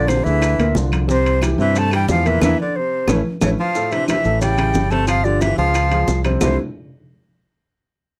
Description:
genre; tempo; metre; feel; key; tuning
Afro-Cuban jazz; 181 BPM; 4/4; straight; C major; A4 = 440 Hz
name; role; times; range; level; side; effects
breathy concert flute; melody; 0.0-6.6 s; C5 to A5; -23 LUFS; equal; none
bright baritone saxophone; second line; 0.0-6.6 s; C3 to A3; -28 LUFS; equal; none
warm concert grand piano; accompaniment; 0.0-6.6 s; A2 to C5; -25 LUFS; equal; none
modern bright fingered electric bass; bass; 0.0-6.6 s; G1 to G2; -22 LUFS; equal; none
bongos; percussion; 0.1-6.5 s; none; -26 LUFS; equal; none
congas; percussion; 0.1-6.5 s; none; -29 LUFS; equal; none
maracas; percussion; 0.1-6.5 s; none; -37 LUFS; equal; none
timbales; percussion; 0.1-6.5 s; none; -30 LUFS; equal; none
claves; percussion; 0.4-6.5 s; none; -37 LUFS; equal; none
room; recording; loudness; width
light reverb; dry, close 1970s-style studio recording; -18 LUFS; mono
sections
0.0-3.7 A section; 3.7-6.4 B section; 6.4-7.7 C section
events
band accent 2.4-3.7; drum fill 2.8-3.7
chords
0.0 Bb9; 1.1 C; 2.4 C9/E; 3.1 A; 3.7 Dsus2; 4.4 A7; 5.1 G7sus4; 5.7 Db; 6.4 C69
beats
0.09 0.42 0.76 | 1.09 1.42 1.75 2.09 | 2.42 2.75 3.08 3.42 | 3.75 4.08 4.41 4.74 | 5.08 5.41 5.74 6.07 | 6.41

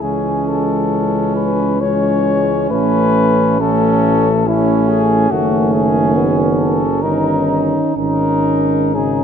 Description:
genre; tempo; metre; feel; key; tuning
classical, hymn-like piece for brass band; 68 BPM; 3/4; uneven beats, rubato; C# minor; A4 = 443 Hz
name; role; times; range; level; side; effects
dark cornet; melody; 0.0-9.2 s; E4 to C#5; -19 LUFS; left 7 dB; none
warm flugelhorn; second line; 0.0-9.2 s; C#4 to D#4; -19 LUFS; right 8 dB; none
dark trombone; accompaniment; 0.0-9.2 s; C#3 to E3; -23 LUFS; right 2 dB; none
warm euphonium; accompaniment; 0.0-9.2 s; G#3 to C#4; -18 LUFS; left 2 dB; none
mellow tuba; bass; 0.0-9.2 s; F#1 to C#2; -20 LUFS; equal; none
room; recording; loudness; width
moderate concert hall reverb, RT60 2.1 s; none; -13 LUFS; side -7 dB against mid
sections
0.0-9.2 A section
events
none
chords
0.0 C#m; 2.7 A; 5.3 D#m7b5/F#; 7.0 D#7/G; 8.0 G#sus4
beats
| 0.03 0.94 1.82 | 2.72 3.61 4.48 | 5.31 6.16 7.03 | 7.97 8.96

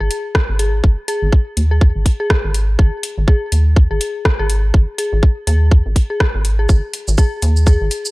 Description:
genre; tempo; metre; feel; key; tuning
minimal techno; 123 BPM; 4/4; swing 58% on 16ths; unclear; A4 = 439 Hz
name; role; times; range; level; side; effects
dark detuned synth bell; riff; 0.0-7.8 s; G#4; -24 LUFS; left 2 dB; chorus, sidechain pumping, tape echo
rubbery square bass; bass; 0.0-7.9 s; G#1 to D#2; -15 LUFS; equal; tube saturation, sidechain pumping
booming analog drum machine; drums; 0.1-8.1 s; hi-hat, rim click, shaker; -22 LUFS; equal; none
electronic kick drum; drums; 0.3-7.8 s; none; -12 LUFS; equal; none
room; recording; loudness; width
little or no reverb; dry, gritty hardware recording, cassette tape; -13 LUFS; side -22 dB against mid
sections
0.0-8.1 A section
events
none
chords
0.0 G#5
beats
0.35 | 0.84 1.33 1.81 2.30 | 2.79 3.28 3.77 4.25 | 4.74 5.23 5.72 6.20 | 6.69 7.18 7.67

